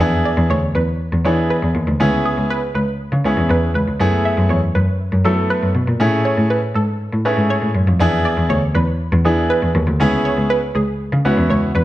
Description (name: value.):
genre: dance-pop.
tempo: 120 BPM.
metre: 4/4.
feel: straight.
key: unclear.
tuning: A4 = 441 Hz.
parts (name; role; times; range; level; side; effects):
clear grand piano; accompaniment; 0.0-11.7 s; A3 to A4; -20 LUFS; equal; none.
rich cello; bass; 0.0-11.8 s; C#2 to F#3; -17 LUFS; equal; none.
wide unison pluck; melody; 0.3-11.8 s; G#4 to E5; -23 LUFS; right 2 dB; none.
room: moderate recital hall reverb, RT60 1.6 s.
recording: none.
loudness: -15 LUFS.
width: side -15 dB against mid.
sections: 0.0-11.8 A section.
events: build-up 0.0-11.8.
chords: 0.0 E7; 2.0 C#m7; 4.0 F#m11; 6.0 Amaj7; 8.0 E7; 10.0 C#m7.